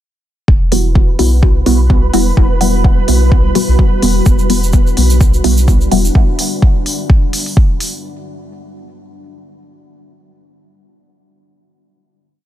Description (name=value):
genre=dub techno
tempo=127 BPM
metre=4/4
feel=swing 55% on 16ths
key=E minor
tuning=A4 = 441 Hz
part: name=deep dark ambient pad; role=sustained chords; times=2.1-8.0 s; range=G3 to F#4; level=-23 LUFS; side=left 1 dB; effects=chorus, built-in reverb, sidechain pumping
part: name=soft dub sub bass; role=bass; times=0.5-6.1 s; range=E1 to B1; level=-14 LUFS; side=equal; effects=sidechain pumping
part: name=electronic kick drum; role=drums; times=0.5-7.7 s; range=none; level=-10 LUFS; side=equal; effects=studio reverb
part: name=flickering grainy texture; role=texture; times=1.1-6.2 s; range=B4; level=-25 LUFS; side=right 5 dB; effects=built-in reverb, sidechain pumping
part: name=filtered dub chord stab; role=stabs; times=0.7-6.0 s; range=G3 to F#4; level=-17 LUFS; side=equal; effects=phaser, sidechain pumping, dub echo
part: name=electronic hi-hat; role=drums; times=0.7-7.9 s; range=none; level=-20 LUFS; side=equal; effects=studio reverb
part: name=egg shaker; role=percussion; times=4.3-6.1 s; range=none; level=-24 LUFS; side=right 4 dB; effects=none
room=digital ambience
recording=dense, heavily limited modern master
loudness=-9 LUFS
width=side -12 dB against mid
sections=0.5-8.0 groove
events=none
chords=0.5 Emadd9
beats=| 0.48 0.95 1.43 1.90 | 2.37 2.84 3.32 3.79 | 4.26 4.73 5.21 5.68 | 6.15 6.62 7.10 7.57